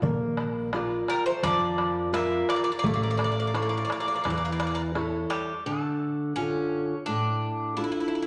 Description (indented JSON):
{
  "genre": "greek folk, Greek bouzouki band",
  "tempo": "85 BPM",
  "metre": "4/4",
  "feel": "straight",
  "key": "unclear",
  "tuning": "A4 = 440 Hz",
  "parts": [
    { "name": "fingerpicked steel-string acoustic guitar", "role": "accompaniment", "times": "0.0-8.3 s", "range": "A2 to D5", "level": "-31 LUFS", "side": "equal", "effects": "none" },
    { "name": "upright bass", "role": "bass", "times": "0.0-5.2 s", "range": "A1 to F2", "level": "-36 LUFS", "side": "equal", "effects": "none" },
    { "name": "darbuka", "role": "percussion", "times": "0.0-5.5 s", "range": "none", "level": "-36 LUFS", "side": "equal", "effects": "none" },
    { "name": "Greek bouzouki", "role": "melody", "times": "1.1-8.3 s", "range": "G3 to E5", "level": "-32 LUFS", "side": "equal", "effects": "none" },
    { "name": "Greek bouzouki", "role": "second line", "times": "1.1-4.8 s", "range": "G3 to Bb3", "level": "-40 LUFS", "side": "equal", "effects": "none" }
  ],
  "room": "wet large studio reverb, RT60 1.3 s",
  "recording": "none",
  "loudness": "-27 LUFS",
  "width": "mono",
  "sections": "0.0-5.7 A section; 5.7-8.3 B section",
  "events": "none",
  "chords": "0.0 Bb; 2.8 A; 5.7 Dm"
}